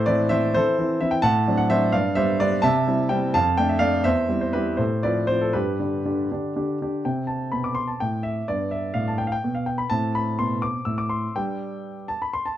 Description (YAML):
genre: classical-period piano sonatina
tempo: 83 BPM (dotted quarters)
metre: 6/8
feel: rubato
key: unclear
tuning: A4 = 440 Hz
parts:
  - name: warm grand piano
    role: solo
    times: 0.0-12.6 s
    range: E2 to E6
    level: -21 LUFS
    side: equal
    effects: none
room: moderate large studio reverb, RT60 0.9 s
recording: dark, warm production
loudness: -21 LUFS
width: side -12 dB against mid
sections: 0.0-7.0 A section; 7.0-12.6 B section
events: none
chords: 0.0 Am; 1.2 D7/A; 1.9 G; 2.6 C; 3.4 Dm/F; 4.1 C/E; 4.8 F/A; 5.5 G; 7.0 Am9; 8.5 G; 9.9 Am; 11.3 G